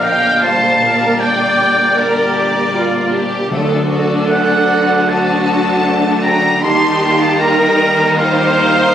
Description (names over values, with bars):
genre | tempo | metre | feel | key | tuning
cinematic, emotional film score for orchestra | 77 BPM | 4/4 | rubato | G minor | A4 = 440 Hz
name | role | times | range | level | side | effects
rich studio violin section | melody | 0.0-8.9 s | G3 to G4 | -25 LUFS | left 3 dB | none
concert flute | second line | 0.0-8.9 s | Bb4 to A5 | -20 LUFS | left 1 dB | none
rich studio violin section | second line | 0.0-8.9 s | D5 to C6 | -21 LUFS | left 1 dB | none
warm oboe | second line | 0.0-8.9 s | D5 to C6 | -16 LUFS | equal | none
rich studio viola section | accompaniment | 0.0-8.9 s | A3 to F5 | -18 LUFS | right 1 dB | none
mellow French horn section | sustained chords | 0.0-8.9 s | D3 to Eb4 | -21 LUFS | left 3 dB | none
clear studio cello section | bass | 0.0-8.9 s | Bb2 to Eb3 | -20 LUFS | right 2 dB | none
clear symphonic double bass section | bass | 0.0-8.9 s | Bb1 to Eb2 | -24 LUFS | right 1 dB | none
timpani | percussion | 3.5-4.7 s | D3 | -24 LUFS | left 1 dB | none
room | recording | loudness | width
wet recital hall reverb, RT60 1.6 s | recorded on a phone in the room, club reverb | -11 LUFS | side -10 dB against mid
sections
0.0-8.9 A section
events
none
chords
0.4 Gm/Bb; 3.5 D; 6.6 Ebadd9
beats
| 0.42 1.20 1.98 2.75 | 3.52 4.31 5.09 5.86 | 6.63 7.40 8.18